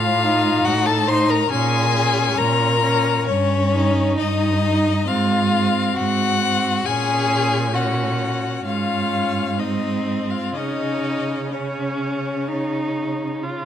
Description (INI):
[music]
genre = classical, slow romantic movement for string quartet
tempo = 61-70 BPM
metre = 4/4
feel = rubato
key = unclear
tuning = A4 = 440 Hz
[part]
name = rich violin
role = melody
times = 0.0-13.7 s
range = Db5 to C6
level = -23 LUFS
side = left 8 dB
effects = none
[part]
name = dark violin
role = second line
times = 0.0-13.7 s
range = Db4 to C5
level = -24 LUFS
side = left 3 dB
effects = none
[part]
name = warm cello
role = bass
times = 0.0-13.7 s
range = G2 to Db3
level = -23 LUFS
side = right 3 dB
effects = none
[part]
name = warm viola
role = accompaniment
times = 0.2-13.7 s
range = C4 to F4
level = -24 LUFS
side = right 1 dB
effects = none
[sound]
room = light reverb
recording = close, detailed microphones, vinyl crackle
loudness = -18 LUFS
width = side -10 dB against mid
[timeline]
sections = 0.0-13.7 A section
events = none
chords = 0.0 F7/A; 1.5 Bbm; 3.3 Eb7/G; 5.1 Ab; 6.9 Gb/Bb; 8.6 Db/Ab; 9.6 Ab; 10.6 N.C.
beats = 0.64 1.52 2.39 | 3.27 4.18 5.07 5.96 | 6.85 7.74 8.65 9.59 | 10.55 11.53 12.48 13.43